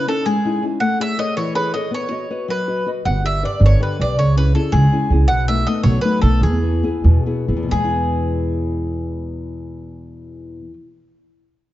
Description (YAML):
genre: italian folk, Italian serenade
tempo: 85-110 BPM (dotted quarters)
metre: 6/8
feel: straight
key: E major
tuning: A4 = 441 Hz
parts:
  - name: bowl-back mandolin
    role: melody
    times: 0.0-10.7 s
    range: G#4 to F#5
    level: -22 LUFS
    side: equal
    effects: none
  - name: nylon-string guitar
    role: accompaniment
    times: 0.0-10.9 s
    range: E2 to D#5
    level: -22 LUFS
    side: left 3 dB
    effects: none
  - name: upright bass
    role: bass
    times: 3.1-10.7 s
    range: G1 to E2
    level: -16 LUFS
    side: right 1 dB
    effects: none
room: light reverb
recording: dark, warm production, nothing above 7.6 kHz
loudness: -16 LUFS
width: side -15 dB against mid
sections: 0.0-7.7 A section; 7.7-10.5 B section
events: slowing down 5.3-7.7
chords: 0.0 C#madd9; 0.8 Amaj7; 1.9 B; 3.1 G; 4.2 C#m; 5.3 B7; 6.4 E